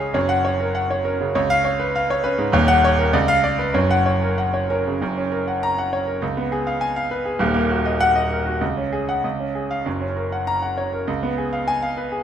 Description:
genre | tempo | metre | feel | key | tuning
classical, virtuoso piano study | 100 BPM | 2/4 | rubato | F# major | A4 = 440 Hz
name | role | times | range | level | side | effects
clear concert grand piano | solo | 0.0-12.2 s | D#1 to A#5 | -18 LUFS | equal | none
room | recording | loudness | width
moderate large studio reverb, RT60 0.8 s | none | -18 LUFS | side -9 dB against mid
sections
0.0-5.0 A section; 5.0-12.2 B section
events
none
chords
0.1 F#; 1.4 C#7; 2.5 D#m7; 3.1 C#7b9; 3.7 F#; 6.2 C#7; 7.4 D#m; 8.6 C#sus4; 9.2 C#; 9.9 F#; 11.1 C#7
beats
| 0.15 0.75 | 1.35 1.95 | 2.53 3.13 | 3.75 4.38 | 5.01 5.62 | 6.22 6.82 | 7.41 8.00 | 8.61 9.24 | 9.86 10.47 | 11.08 11.68

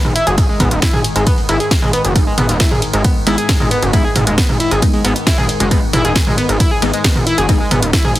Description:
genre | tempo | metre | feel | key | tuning
driving peak-time techno | 135 BPM | 4/4 | straight | G# minor | A4 = 440 Hz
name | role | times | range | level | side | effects
gritty driven synth bass | bass | 0.0-8.1 s | D#1 to G#1 | -18 LUFS | equal | sidechain pumping
deep dark ambient pad | drone | 0.1-8.2 s | G#2 to D#3 | -24 LUFS | left 2 dB | chorus, built-in reverb, sidechain pumping
techno drum kit | drums | 0.0-8.2 s | hi-hat, ride cymbal, snare drum, toms | -19 LUFS | right 1 dB | none
overdriven synth lead | riff | 0.2-8.1 s | G#3 to G#4 | -19 LUFS | equal | distortion, cassette tape, sidechain pumping, tape echo
dusty soul sampler-style drum kit | drums | 0.2-8.2 s | hi-hat, snare drum | -30 LUFS | left 1 dB | none
electronic kick drum | drums | 0.4-8.0 s | none | -15 LUFS | equal | none
filtered dub chord stab | stabs | 2.2-7.6 s | G#3 to D#4 | -23 LUFS | left 2 dB | phaser, wide subtle chorus, sidechain pumping, dub echo
room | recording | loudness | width
light reverb, digital ambience | heavily compressed radio sound, multiband compression | -12 LUFS | side -15 dB against mid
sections
0.0-8.2 A section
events
none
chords
0.0 G#m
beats
| 0.38 0.82 1.27 1.71 | 2.15 2.60 3.04 3.49 | 3.93 4.38 4.82 5.27 | 5.71 6.16 6.60 7.04 | 7.49 7.93

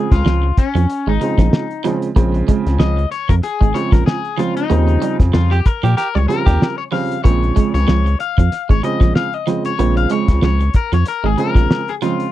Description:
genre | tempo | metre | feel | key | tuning
funk | 94 BPM | 4/4 | swing 56% on 16ths | Bb dorian | A4 = 442 Hz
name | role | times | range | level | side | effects
electric guitar at the edge of break-up | accompaniment | 0.0-12.3 s | Db4 to F5 | -22 LUFS | left 8 dB | none
clean electric guitar | riff | 0.0-12.1 s | F3 to Bb3 | -22 LUFS | right 9 dB | none
warm upright piano | stabs | 0.0-12.2 s | Db3 to C4 | -21 LUFS | right 4 dB | none
rubbery square bass | bass | 0.1-11.7 s | Ab1 to Bb2 | -15 LUFS | equal | none
cloth-damped thuddy drum kit | drums | 0.1-12.3 s | hi-hat, kick drum, snare drum | -14 LUFS | equal | none
raspy tenor saxophone | second line | 5.5-6.7 s | G4 | -21 LUFS | right 5 dB | none
room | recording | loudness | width
little or no reverb | dry, close 1970s-style studio recording | -14 LUFS | side -14 dB against mid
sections
0.0-12.3 A section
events
clean electric guitar solo 0.0-12.3; band accent 4.7-7.2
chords
0.0 Bbm7; 4.7 Eb13; 7.2 Bbm7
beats
0.25 0.89 1.52 | 2.16 2.80 3.43 4.07 | 4.70 5.34 5.98 6.61 | 7.25 7.88 8.52 9.16 | 9.79 10.43 11.07 11.70

